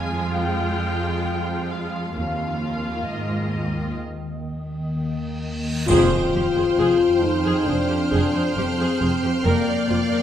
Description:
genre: cinematic, suspense film score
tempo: 66 BPM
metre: 4/4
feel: straight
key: F dorian from 5.9 s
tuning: A4 = 439 Hz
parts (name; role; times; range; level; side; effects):
- dark studio violin section; melody; 0.0-10.2 s; Eb5 to Ab5; -33 LUFS; equal; none
- rich symphonic viola section; accompaniment; 0.0-10.2 s; Ab3 to Bb4; -29 LUFS; right 1 dB; none
- rich symphonic cello section; bass; 0.0-10.2 s; Eb2 to Ab2; -29 LUFS; right 2 dB; none
- organ-like drone; drone; 0.0-10.2 s; Eb2 to F2; -29 LUFS; equal; ensemble chorus, built-in reverb
- large celesta; texture; 0.3-10.2 s; F4 to C6; -36 LUFS; left 4 dB; none
- rich symphonic double bass section; bass; 2.2-10.0 s; F1 to Eb2; -28 LUFS; right 2 dB; none
- reverse cymbal and impact; sound effects; 5.4-9.5 s; none; -32 LUFS; equal; none
- mellow French horn section; sustained chords; 4.9-10.2 s; Bb3 to F4; -21 LUFS; left 4 dB; none
- rich symphonic violin section; second line; 5.9-10.2 s; C5 to D5; -28 LUFS; right 3 dB; none
- dark symphonic cello section; riff; 5.9-10.2 s; F2 to F3; -30 LUFS; right 2 dB; none
- triangle; percussion; 5.9-7.6 s; none; -37 LUFS; left 2 dB; none
- clear symphonic violin section; texture; 5.9-10.2 s; F6 to C7; -32 LUFS; right 3 dB; none
room: wet recital hall reverb, RT60 1.5 s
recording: none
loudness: -20 LUFS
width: side -10 dB against mid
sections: 0.0-5.9 A section; 5.9-10.2 B section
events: break 4.0-5.9; reverse cymbal 5.4-5.9; band accent 5.9-6.8; impact 5.9-9.4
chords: 0.0 Fm; 2.2 Ebsus2; 5.9 Fmadd9; 9.4 Bb/F

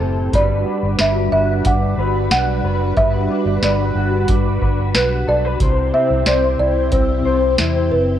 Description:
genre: dream pop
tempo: 91 BPM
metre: 4/4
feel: straight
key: G major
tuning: A4 = 440 Hz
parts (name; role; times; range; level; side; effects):
- ensemble organ-string; sustained chords; 0.0-8.2 s; C3 to B4; -22 LUFS; right 1 dB; phaser, ensemble chorus
- mellow electric guitar; arpeggios; 0.0-8.2 s; A2 to C5; -22 LUFS; left 3 dB; ensemble chorus, tape echo
- vintage muted fingered electric bass; bass; 0.0-8.2 s; F#1 to E2; -20 LUFS; equal; none
- booming analog drum machine; drums; 0.3-7.7 s; hi-hat, kick drum, snare drum; -18 LUFS; equal; none
- folk marimba with soft mallets; melody; 0.4-8.2 s; B4 to F#5; -20 LUFS; right 2 dB; tape echo
room: moderate lush hall reverb, RT60 1.7 s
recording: worn, warbling old tape, cassette tape, warbly pitch drift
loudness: -14 LUFS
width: side -10 dB against mid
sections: 0.0-8.2 A section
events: none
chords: 0.3 Gmaj7; 5.6 C

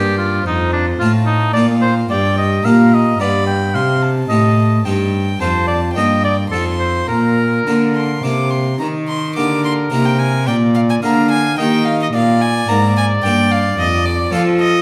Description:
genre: classical, baroque-style sonata movement with continuo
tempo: 109 BPM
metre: 3/4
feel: straight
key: Bb major, Eb major from 8.8 s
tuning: A4 = 440 Hz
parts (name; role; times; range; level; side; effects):
- warm violin; melody; 0.0-14.8 s; C5 to D6; -24 LUFS; equal; none
- clear oboe; second line; 0.0-14.8 s; D4 to G5; -22 LUFS; equal; none
- harpsichord; accompaniment; 0.0-14.8 s; F2 to Bb4; -21 LUFS; equal; none
- rich cello; bass; 0.0-14.8 s; F2 to F3; -19 LUFS; equal; none
room: wet recital hall reverb, RT60 1.6 s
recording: none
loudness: -15 LUFS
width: mono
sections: 0.0-8.8 A section; 8.8-14.8 A section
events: none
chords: 0.5 F; 1.6 Bb; 2.1 Gm; 3.2 G7; 3.8 Cm; 5.4 F; 6.0 Gm; 6.5 F7; 7.1 Bb; 8.8 Eb; 10.5 Bb7; 11.6 Eb; 12.1 Bb; 13.8 F

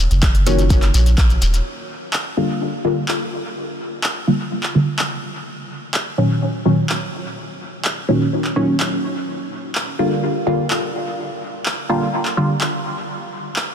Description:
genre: dub techno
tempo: 126 BPM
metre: 4/4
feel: straight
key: unclear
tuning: A4 = 440 Hz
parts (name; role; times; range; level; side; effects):
- soft dub sub bass; bass; 0.0-1.6 s; Eb1 to Bb1; -15 LUFS; equal; sidechain pumping
- deep house drum kit; drums; 0.1-13.7 s; handclaps, hi-hat; -24 LUFS; equal; studio reverb, dub echo
- shekere; percussion; 0.1-1.6 s; none; -28 LUFS; left 4 dB; none
- electronic kick drum; drums; 0.2-1.3 s; none; -16 LUFS; equal; studio reverb
- filtered dub chord stab; stabs; 0.5-12.6 s; Bb2 to F4; -20 LUFS; equal; chorus, phaser, sidechain pumping, dub echo
room: light reverb, digital ambience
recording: dense, heavily limited modern master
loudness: -17 LUFS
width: side -8 dB against mid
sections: 0.0-1.7 A section; 1.7-13.7 B section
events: none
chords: 0.0 Ebm7; 1.7 Gm7; 5.5 Ebm7; 9.3 Gm7; 13.1 N.C.

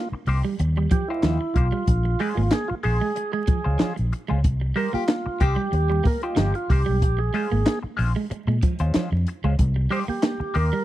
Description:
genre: funk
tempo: 93 BPM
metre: 4/4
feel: straight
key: Bb dorian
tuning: A4 = 442 Hz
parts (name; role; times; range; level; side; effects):
- percussive tonewheel organ; melody; 0.0-10.8 s; E4 to C5; -27 LUFS; right 2 dB; slow rotary speaker
- electric guitar at the edge of break-up; riff; 0.0-10.8 s; F3 to Bb3; -29 LUFS; right 5 dB; spring reverb
- clean electric guitar; accompaniment; 0.1-10.7 s; Ab3 to C5; -31 LUFS; left 6 dB; wah
- vintage muted fingered electric bass; bass; 0.1-10.7 s; G1 to Bb2; -22 LUFS; equal; none
- compact cocktail drum kit; drums; 0.3-10.7 s; handclaps, hi-hat, kick drum, snare drum; -22 LUFS; equal; none
- raspy tenor saxophone; second line; 4.9-5.6 s; G4; -31 LUFS; left 10 dB; none
room: studio reverb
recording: dry, close 1970s-style studio recording, vinyl crackle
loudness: -20 LUFS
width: side -14 dB against mid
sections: 0.0-10.8 A section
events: tonewheel organ solo 0.0-10.8; band accent 4.4-7.0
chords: 0.0 Cm7; 1.9 Bbm9; 4.4 Cm7; 7.0 Bbm9; 9.6 Cm7

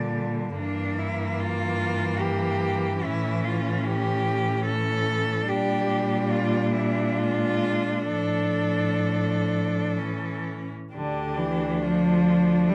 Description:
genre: classical, lyrical piece for cello ensemble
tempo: 61-75 BPM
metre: 3/4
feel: rubato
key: D minor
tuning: A4 = 440 Hz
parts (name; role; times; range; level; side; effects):
- rich cello; melody; 0.0-12.7 s; D4 to D5; -32 LUFS; equal; none
- clear cello; second line; 0.0-12.7 s; G3 to D4; -32 LUFS; equal; none
- rich cello; accompaniment; 0.0-12.7 s; D3 to Ab3; -30 LUFS; equal; none
- rich cello; bass; 0.0-12.7 s; D2 to Bb2; -31 LUFS; equal; none
room: light reverb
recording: none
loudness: -25 LUFS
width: mono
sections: 0.0-10.9 A section; 10.9-12.7 A section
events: none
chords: 0.0 Gm/Bb; 0.6 Edim/G; 3.0 A; 5.5 Gm/Bb; 7.2 Bb7; 8.1 Dm/A; 10.0 A; 10.9 Dm

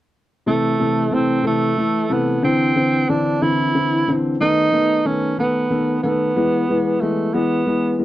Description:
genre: pop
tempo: 61 BPM (dotted quarters)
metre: 6/8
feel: straight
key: A minor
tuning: A4 = 439 Hz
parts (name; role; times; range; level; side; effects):
- warm tenor saxophone; melody; 0.5-8.0 s; A3 to E4; -20 LUFS; right 3 dB; none
- warm baby grand piano; accompaniment; 0.5-8.0 s; C3 to C4; -18 LUFS; left 2 dB; none
room: light reverb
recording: dry, close 1970s-style studio recording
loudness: -16 LUFS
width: side -14 dB against mid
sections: 0.5-8.0 A section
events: none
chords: 0.5 Am; 2.4 Cadd9; 4.4 B7; 6.4 E

